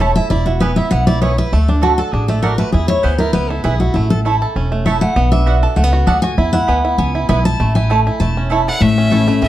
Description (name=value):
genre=bluegrass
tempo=198 BPM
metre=4/4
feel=straight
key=A major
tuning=A4 = 437 Hz
part: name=picked steel-string acoustic guitar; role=accompaniment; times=0.0-9.5 s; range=G#2 to A5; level=-17 LUFS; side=left 2 dB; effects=none
part: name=bluegrass banjo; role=arpeggios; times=0.0-9.5 s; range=A3 to A4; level=-21 LUFS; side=right 3 dB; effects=none
part: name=mandolin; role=stabs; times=0.0-9.2 s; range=A3 to A5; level=-21 LUFS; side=right 5 dB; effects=none
part: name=upright bass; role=bass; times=0.0-9.5 s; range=E1 to E2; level=-16 LUFS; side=equal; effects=none
part: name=clear fiddle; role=melody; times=8.7-9.5 s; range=E5 to F#5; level=-19 LUFS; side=left 1 dB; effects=plate reverb
room=light reverb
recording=dark, warm production, faint mains hum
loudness=-12 LUFS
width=side -14 dB against mid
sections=0.0-8.8 A section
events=steel-string acoustic guitar solo 0.0-8.8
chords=0.3 E; 1.5 D; 2.7 E; 4.0 A; 5.2 Bm; 7.6 A